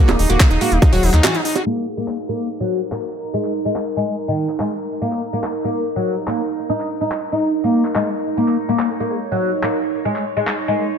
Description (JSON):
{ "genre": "psychedelic trance", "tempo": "143 BPM", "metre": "4/4", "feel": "straight", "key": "Eb minor", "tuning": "A4 = 440 Hz", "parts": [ { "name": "oud", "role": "melody", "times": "0.0-10.9 s", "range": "Eb3 to Eb4", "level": "-20 LUFS", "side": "left 2 dB", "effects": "phaser, sidechain pumping, digital delay" }, { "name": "evolving wavetable pad", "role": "sustained chords", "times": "0.1-11.0 s", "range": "Eb4 to Db5", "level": "-24 LUFS", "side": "right 3 dB", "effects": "phaser, built-in reverb, sidechain pumping" }, { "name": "overdriven acid bass", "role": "riff", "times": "0.0-1.6 s", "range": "Eb4 to Gb4", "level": "-23 LUFS", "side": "moving between left 4 dB and right 5 dB", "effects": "distortion, auto-pan, sidechain pumping, digital delay" }, { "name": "round analog bass", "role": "bass", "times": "0.1-1.2 s", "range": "Eb1 to Eb2", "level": "-16 LUFS", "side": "equal", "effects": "none" }, { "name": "garage drum kit", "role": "drums", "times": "0.1-10.6 s", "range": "bongos, handclaps, hi-hat", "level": "-24 LUFS", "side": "right 2 dB", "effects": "none" }, { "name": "electronic kick drum", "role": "drums", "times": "0.4-0.9 s", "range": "none", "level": "-14 LUFS", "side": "equal", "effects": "none" }, { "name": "resonant blip pluck", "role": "second line", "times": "8.9-10.9 s", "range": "Ab3 to Bb3", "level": "-33 LUFS", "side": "right 4 dB", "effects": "phaser, sidechain pumping, high-pass filter, tape echo" } ], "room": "light reverb, digital ambience", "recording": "low-pass filter", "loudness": "-17 LUFS", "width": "side -7 dB against mid", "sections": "0.0-1.7 A section; 1.7-11.0 B section", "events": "drop 0.0-1.7; break 1.2-1.7; filter sweep on ambient pad 1.7-11.0; filter sweep 1.7-11.0", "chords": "0.0 Eb5" }